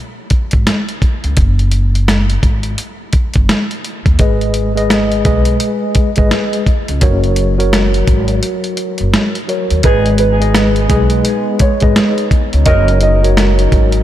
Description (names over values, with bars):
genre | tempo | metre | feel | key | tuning
hip hop, boom-bap hip-hop | 85 BPM | 4/4 | swing 62% on 16ths | G# minor | A4 = 440 Hz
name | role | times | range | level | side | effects
dusty soul sampler-style drum kit | drums | 0.3-14.0 s | hi-hat, kick drum, rim click, snare drum | -14 LUFS | equal | none
upright bass | bass | 0.5-14.0 s | F#1 to D#2 | -14 LUFS | equal | none
mellow tine electric piano | accompaniment | 4.2-14.0 s | F#3 to D#5 | -16 LUFS | left 1 dB | medium stereo tremolo, cassette tape, high-pass filter, low-pass filter
dark upright piano | melody | 9.8-14.0 s | B4 to D#5 | -18 LUFS | right 4 dB | wide subtle chorus, high-pass filter, low-pass filter, diffuse ambient delay
hollow soft pad | sustained chords | 9.8-14.0 s | F#3 to D#4 | -25 LUFS | right 2 dB | chorus, high-pass filter, low-pass filter
clear saxophone section | stabs | 9.8-12.9 s | B3 to A#4 | -26 LUFS | left 1 dB | high-pass filter, low-pass filter, diffuse ambient delay
room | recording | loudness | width
light reverb, small room ambience | none | -11 LUFS | side -12 dB against mid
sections
0.0-9.8 A section; 9.8-14.0 B section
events
break 0.0-4.2, 8.4-9.8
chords
0.0 N.C.; 4.2 G#m; 7.0 D#m7/F# (rootless); 9.8 G#m; 12.7 D#m7/F#